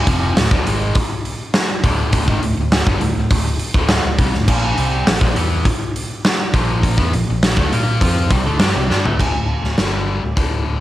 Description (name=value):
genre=hard rock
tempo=102 BPM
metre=4/4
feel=straight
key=D minor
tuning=A4 = 435 Hz
part: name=cranked stack guitar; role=riff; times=0.0-9.2 s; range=D2 to Bb4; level=-25 LUFS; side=right 6 dB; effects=overdrive
part: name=distorted electric guitar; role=riff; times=0.0-10.8 s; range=D2 to Bb4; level=-24 LUFS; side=left 6 dB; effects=overdrive
part: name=fingered electric bass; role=bass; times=0.0-10.8 s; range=D1 to Bb2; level=-20 LUFS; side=equal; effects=none
part: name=big rock drum kit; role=drums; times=0.1-10.5 s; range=crash cymbal, hi-hat, kick drum, snare drum, toms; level=-17 LUFS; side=equal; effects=cassette tape
room=light reverb, small room ambience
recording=home recording on cassette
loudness=-14 LUFS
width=side -14 dB against mid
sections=0.0-9.2 A section; 9.2-10.8 B section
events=drum fill 8.9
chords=0.0 Dm; 4.5 Bb5; 9.2 D5